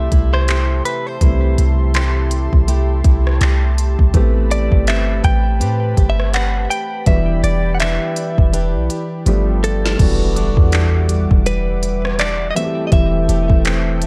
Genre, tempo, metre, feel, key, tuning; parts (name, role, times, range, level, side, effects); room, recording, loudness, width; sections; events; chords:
contemporary R&B; 82 BPM; 4/4; swing 58% on 16ths; E minor; A4 = 440 Hz
direct-recorded clean electric guitar; melody; 0.0-13.6 s; A4 to G5; -25 LUFS; equal; harmonic tremolo, delay
warm grand piano; accompaniment; 0.0-14.1 s; E3 to G4; -29 LUFS; equal
warm analog pad; sustained chords; 0.0-14.1 s; G3 to D6; -32 LUFS; equal; chorus, sidechain pumping
fingerpicked plugged-in swing-style acoustic guitar; arpeggios; 0.0-14.1 s; C3 to B4; -27 LUFS; equal
clean 808-style bass; bass; 0.0-14.1 s; E1 to A2; -19 LUFS; equal
soft synth bell; texture; 0.0-12.2 s; G5 to A6; -36 LUFS; equal
smooth R&B drum kit; drums; 0.1-14.1 s; crash cymbal, handclaps, hi-hat, kick drum, rim click, snare drum; -19 LUFS; equal
impact; sound effects; 10.1-12.9 s; -29 LUFS; equal
digital ambience; dark, warm production; -16 LUFS; mono
0.0-10.0 A section; 10.0-14.1 B section
drum fill 8.5-10.0; impact 10.0-12.9
0.0 C6; 4.1 Am9; 7.1 Em7; 9.3 G9; 10.0 Em9; 12.6 Am7/E